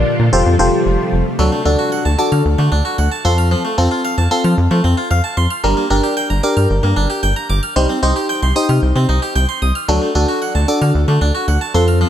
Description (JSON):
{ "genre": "synth-pop", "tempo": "113 BPM", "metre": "4/4", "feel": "straight", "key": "unclear", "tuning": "A4 = 440 Hz", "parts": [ { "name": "FM electric piano", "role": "accompaniment", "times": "0.0-12.1 s", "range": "C4 to C6", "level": "-18 LUFS", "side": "left 1 dB", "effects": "chorus, phaser, shimmer reverb" }, { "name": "soft string machine", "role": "sustained chords", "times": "0.0-1.4 s", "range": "Bb2 to F4", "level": "-22 LUFS", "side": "equal", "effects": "ensemble chorus, shimmer reverb" }, { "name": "rubbery square bass", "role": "bass", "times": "0.0-12.0 s", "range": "F1 to F3", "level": "-14 LUFS", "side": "equal", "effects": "none" }, { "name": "harpsichord", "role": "arpeggios", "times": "1.4-12.1 s", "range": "F3 to F6", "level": "-20 LUFS", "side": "right 1 dB", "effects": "digital delay, shimmer reverb" } ], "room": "light reverb, digital ambience", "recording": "none", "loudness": "-13 LUFS", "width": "side -10 dB against mid", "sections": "0.0-1.4 A section; 1.4-12.1 B section", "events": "FM electric piano fill 4.8-5.6", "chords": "0.3 Fadd9; 1.4 D; 3.2 F; 5.6 Gm; 7.8 Cm; 9.9 D" }